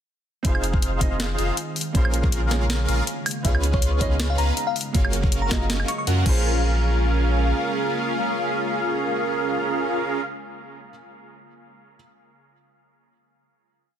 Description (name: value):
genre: future bass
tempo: 160 BPM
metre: 4/4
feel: swing 54% on 16ths, half-time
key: Bb minor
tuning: A4 = 440 Hz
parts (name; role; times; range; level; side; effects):
- felt-muted upright piano; accompaniment; 0.4-12.0 s; Gb3 to F5; -32 LUFS; right 6 dB; sidechain pumping, dub echo
- ethereal airy pad; sustained chords; 1.1-10.2 s; Db3 to F5; -34 LUFS; equal; ensemble chorus, built-in reverb, sidechain pumping
- big bright polysynth; riff; 0.4-10.2 s; Db4 to Gb5; -26 LUFS; right 1 dB; lush chorus, sidechain pumping, dub echo
- saturated sub bass; bass; 0.4-7.5 s; F1 to Gb2; -23 LUFS; equal; sidechain pumping
- electronic kick drum; drums; 0.4-6.3 s; none; -22 LUFS; equal; studio reverb
- trap drum kit; drums; 0.4-6.3 s; crash cymbal, hi-hat, snare drum, woodblock; -28 LUFS; left 1 dB; studio reverb
- bell-like FM electric piano; melody; 3.5-6.0 s; Db5 to Db6; -28 LUFS; left 2 dB; chorus, phaser, sidechain pumping, ping-pong delay
room: little or no reverb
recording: dense, heavily limited modern master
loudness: -20 LUFS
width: side -9 dB against mid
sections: 0.4-6.4 drop; 6.4-9.4 final hit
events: drop 0.4-6.4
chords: 0.4 Fm7; 1.8 Bbm7; 3.3 Db7; 4.9 Gbmaj7; 6.3 Bbm7